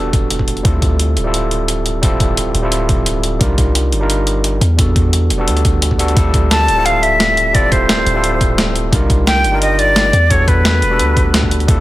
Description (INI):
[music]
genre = liquid drum and bass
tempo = 174 BPM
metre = 4/4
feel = straight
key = D dorian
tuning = A4 = 440 Hz
[part]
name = overdriven tine electric piano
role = accompaniment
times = 0.0-11.8 s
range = G3 to Bb4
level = -19 LUFS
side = right 1 dB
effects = tape echo
[part]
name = long sustained 808-style bass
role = bass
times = 0.0-11.8 s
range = D1 to E2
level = -16 LUFS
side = equal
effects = none
[part]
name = breakbeat sampler-style drum kit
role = drums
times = 0.1-11.8 s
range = hi-hat, snare drum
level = -18 LUFS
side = equal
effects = overdrive
[part]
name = electronic kick drum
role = drums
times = 0.1-11.8 s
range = none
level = -16 LUFS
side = equal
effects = overdrive
[part]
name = breathy silver concert flute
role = melody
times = 6.5-11.5 s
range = B4 to A5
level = -15 LUFS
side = equal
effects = digital delay
[sound]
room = moderate recital hall reverb, RT60 1.4 s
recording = none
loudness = -11 LUFS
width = side -16 dB against mid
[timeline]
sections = 0.0-11.8 A section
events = none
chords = 0.0 Em11; 0.6 Dm11; 3.4 Cm11; 4.6 Em11; 6.2 Dm11; 8.9 Cm11; 10.1 Em11